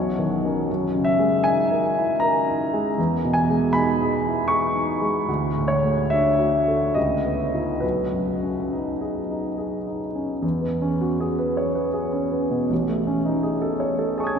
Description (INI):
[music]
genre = classical, impressionist solo piano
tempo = 66-82 BPM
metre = 3/4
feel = rubato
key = B major, E major from 10.4 s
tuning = A4 = 440 Hz
[part]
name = warm grand piano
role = solo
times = 0.0-14.4 s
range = A1 to G#6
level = -20 LUFS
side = equal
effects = none
[sound]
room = wet cathedral reverb, RT60 6.2 s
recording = minimal, uncompressed stereo recording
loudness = -20 LUFS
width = side -7 dB against mid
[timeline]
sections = 0.0-10.4 A section; 10.4-14.4 B section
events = none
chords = 0.0 Bmaj9; 0.7 F#13; 3.0 Emaj7; 5.3 D; 7.0 C#9; 7.8 B69; 10.4 E69; 12.7 Amaj7#11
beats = | 0.69 1.45 2.22 | 2.98 3.74 4.50 | 5.28 6.11 6.96 | 7.83 8.72 9.59 | 10.43 11.21 11.96 | 12.71 13.44 14.18